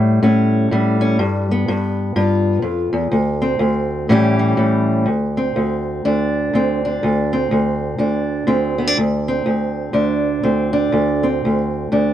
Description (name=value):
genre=blues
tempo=123 BPM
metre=4/4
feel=swing 60% on 8ths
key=unclear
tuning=A4 = 438 Hz
part: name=fingerpicked steel-string acoustic guitar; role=solo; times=0.0-12.1 s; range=D2 to G4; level=-15 LUFS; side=equal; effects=none
room=small room ambience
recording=dry, close 1970s-style studio recording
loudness=-15 LUFS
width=side -11 dB against mid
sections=0.0-5.1 A section; 5.1-12.1 B section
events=none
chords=0.0 A7; 1.2 G7; 3.1 Csus2/D; 4.1 A7; 5.1 Csus2/D